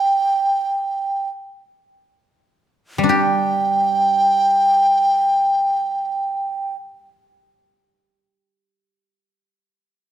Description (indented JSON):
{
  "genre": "chinese traditional, Chinese chamber ensemble",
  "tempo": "free time",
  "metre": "none",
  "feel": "none",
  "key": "unclear",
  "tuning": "A4 = 440 Hz",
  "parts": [
    { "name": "mellow hollow large dizi", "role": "melody", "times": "0.0-6.8 s", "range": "G5", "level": "-16 LUFS", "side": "right 1 dB", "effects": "none" },
    { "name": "guzheng", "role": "accompaniment", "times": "3.0-9.0 s", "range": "G3 to G4", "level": "-20 LUFS", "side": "left 1 dB", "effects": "none" }
  ],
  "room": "moderate recital hall reverb, RT60 1.6 s",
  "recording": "minimal, uncompressed stereo recording",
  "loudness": "-16 LUFS",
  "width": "side -11 dB against mid",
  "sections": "0.0-3.1 A section; 3.1-8.0 B section",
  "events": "slowing down 0.0-3.1",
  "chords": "none"
}